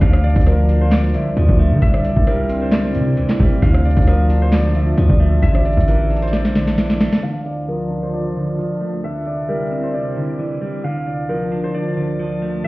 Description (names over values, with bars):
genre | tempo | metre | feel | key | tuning
hip hop, trap | 133 BPM | 4/4 | half-time | D minor | A4 = 445 Hz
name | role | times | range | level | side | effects
Celtic harp | melody | 0.0-12.7 s | Bb4 to F5 | -24 LUFS | equal | low-pass filter
clean electric guitar | accompaniment | 0.0-12.7 s | D3 to D4 | -23 LUFS | equal | low-pass filter
glassy FM pad | sustained chords | 0.0-12.7 s | C2 to A5 | -27 LUFS | right 1 dB | ensemble chorus, built-in reverb, low-pass filter
distorted 808-style bass | bass | 0.0-7.1 s | A1 to D3 | -16 LUFS | equal | distortion
booming analog drum machine | drums | 0.0-7.2 s | handclaps, hi-hat, kick drum, rim click, snare drum | -16 LUFS | equal | overdrive
warm velvety synth lead | second line | 0.2-5.9 s | D5 to F5 | -30 LUFS | left 1 dB | chorus, ping-pong delay
room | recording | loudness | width
digital ambience | heard muffled through a wall, stone room reverb, vinyl crackle, EQ | -15 LUFS | side -20 dB against mid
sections
0.0-7.2 A section; 7.2-12.7 B section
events
drum fill 6.3-7.2; filter sweep 7.2-12.7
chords
0.0 Dm; 1.8 Cadd9; 3.6 Dm; 5.4 Asus4; 7.2 Dm; 9.0 Cadd9; 10.8 Dm